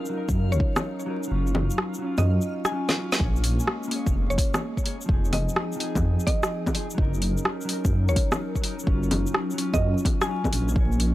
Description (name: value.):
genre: future garage.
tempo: 127 BPM.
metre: 4/4.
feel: swing 67% on 16ths.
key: Bb minor.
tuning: A4 = 441 Hz.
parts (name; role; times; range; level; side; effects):
mellow electric guitar; accompaniment; 0.0-11.1 s; F3 to Db5; -33 LUFS; left 2 dB; sidechain pumping, tape echo.
warbly tape-like pad; sustained chords; 0.0-11.1 s; F3 to Bb4; -34 LUFS; right 1 dB; chorus, built-in reverb, sidechain pumping.
backwards swelling texture; texture; 0.0-3.2, 11.1 s; Eb4 to F5; -44 LUFS; right 1 dB; built-in reverb.
deep house drum kit; drums; 0.1-11.1 s; bongos, hi-hat, rim click, shaker, snare drum; -27 LUFS; left 1 dB; none.
dark detuned saw bass; bass; 0.3-11.1 s; F1 to Gb2; -24 LUFS; equal; sidechain pumping.
electronic kick drum; drums; 0.3-10.9 s; none; -25 LUFS; equal; none.
mallet-like synth pluck; melody; 0.5-10.7 s; Db5 to Ab5; -34 LUFS; equal; chorus, tape echo.
room: little or no reverb.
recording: dry, gritty hardware recording, transformer saturation, vinyl crackle.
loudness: -22 LUFS.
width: side -16 dB against mid.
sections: 0.0-3.2 A section; 3.2-11.1 B section.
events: kick drops out 1.3-3.2; drum fill 2.9-3.2.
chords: 0.0 Gb6; 1.3 Ebm7/Gb; 3.2 Bbm7; 5.1 Fm7; 7.0 Gb6; 8.9 Ebm7/Gb.